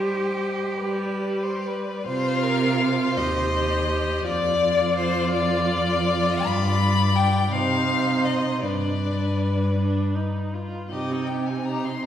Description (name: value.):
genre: classical, slow romantic movement for string quartet.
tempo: 54 BPM (dotted quarters).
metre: 6/8.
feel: uneven beats, rubato.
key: C minor.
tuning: A4 = 440 Hz.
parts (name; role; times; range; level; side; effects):
rich violin; melody; 0.0-12.1 s; C5 to C6; -26 LUFS; left 5 dB; none.
rich violin; second line; 0.0-12.0 s; Eb4 to D5; -29 LUFS; left 2 dB; none.
clear viola; accompaniment; 0.0-12.1 s; G3 to G4; -30 LUFS; right 1 dB; none.
rich cello; bass; 0.0-12.1 s; Eb2 to G4; -24 LUFS; right 1 dB; none.
room: wet concert hall reverb, RT60 2.1 s.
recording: heard from further back in the room.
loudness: -21 LUFS.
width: side -10 dB against mid.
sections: 0.0-2.1 A section; 2.1-12.1 B section.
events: none.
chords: 0.0 Cm/G; 2.1 Cm; 4.2 Dm/F; 6.5 G7; 7.5 Cm; 8.6 G; 10.9 Cm.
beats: 0.80 | 2.05 3.17 | 4.25 5.33 | 6.46 7.51 | 8.63 9.77 | 10.90 12.03.